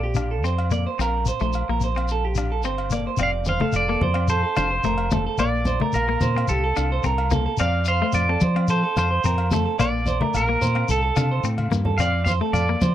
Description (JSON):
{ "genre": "highlife guitar band", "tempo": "109 BPM", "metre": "4/4", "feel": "straight", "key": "F major", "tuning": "A4 = 440 Hz", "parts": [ { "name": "clean electric guitar", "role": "melody", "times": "0.0-12.9 s", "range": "A4 to F5", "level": "-26 LUFS", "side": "left 1 dB", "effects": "none" }, { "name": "clean electric guitar", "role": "arpeggios", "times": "0.0-12.9 s", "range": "G4 to D5", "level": "-26 LUFS", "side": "right 8 dB", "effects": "none" }, { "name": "deep dub fingered electric bass", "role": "bass", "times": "0.0-12.9 s", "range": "F1 to F3", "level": "-24 LUFS", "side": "equal", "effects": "none" }, { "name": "shekere", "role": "percussion", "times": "0.1-12.9 s", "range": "none", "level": "-29 LUFS", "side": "left 4 dB", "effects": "none" }, { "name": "clean electric guitar", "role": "accompaniment", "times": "0.2-12.9 s", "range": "A3 to D4", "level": "-30 LUFS", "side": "left 10 dB", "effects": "spring reverb" }, { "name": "agogo bells", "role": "percussion", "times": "0.2-12.7 s", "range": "none", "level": "-34 LUFS", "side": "left 3 dB", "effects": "none" }, { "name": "congas", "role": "percussion", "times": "3.5-12.9 s", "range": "none", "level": "-26 LUFS", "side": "left 2 dB", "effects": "none" } ], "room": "light reverb", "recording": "dry, close 1970s-style studio recording", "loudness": "-19 LUFS", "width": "side -12 dB against mid", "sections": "0.0-3.2 A section; 3.2-12.9 B section", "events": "drum fill 11.6-12.0", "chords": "0.0 Bbadd9; 3.2 F; 5.4 Bb; 6.5 C5; 7.6 F; 9.8 Bb; 10.9 C5; 12.0 F" }